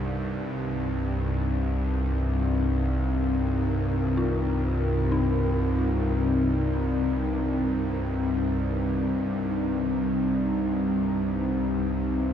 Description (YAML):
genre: dark ambient drone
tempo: free time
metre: none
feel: none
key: unclear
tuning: A4 = 440 Hz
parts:
  - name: dark analog pad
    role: sustained chords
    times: 0.0-12.3 s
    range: C4 to C5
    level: -28 LUFS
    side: left 2 dB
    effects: chorus, phaser
  - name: bowed-like drone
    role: drone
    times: 0.0-12.3 s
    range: C2 to G2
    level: -26 LUFS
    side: equal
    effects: built-in reverb
  - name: dark detuned synth bell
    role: arpeggios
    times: 4.2-12.3 s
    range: Eb4 to F4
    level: -36 LUFS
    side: left 3 dB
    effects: chorus, ping-pong delay
room: wet huge ambient reverb, RT60 7.3 s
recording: dark, warm production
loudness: -24 LUFS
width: side -9 dB against mid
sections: 0.0-12.3 A section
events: none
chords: 0.0 Bbsus4/C